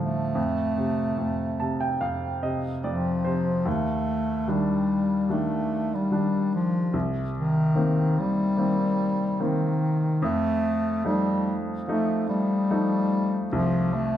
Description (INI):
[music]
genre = pop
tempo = 73 BPM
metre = 4/4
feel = straight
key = unclear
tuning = A4 = 440 Hz
[part]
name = warm bass clarinet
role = melody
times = 0.0-14.2 s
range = Eb3 to A3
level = -24 LUFS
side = left 1 dB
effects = none
[part]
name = clear baby grand piano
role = accompaniment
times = 0.0-14.2 s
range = C2 to A5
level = -27 LUFS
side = right 1 dB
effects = none
[sound]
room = wet large studio reverb, RT60 1.2 s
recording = band playing live in one room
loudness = -23 LUFS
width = side -11 dB against mid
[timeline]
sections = 0.0-3.7 A section; 3.7-14.2 B section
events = grand piano fill 1.2-3.7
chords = 0.4 F; 3.7 Ebmaj7; 6.9 Cm7; 10.2 F7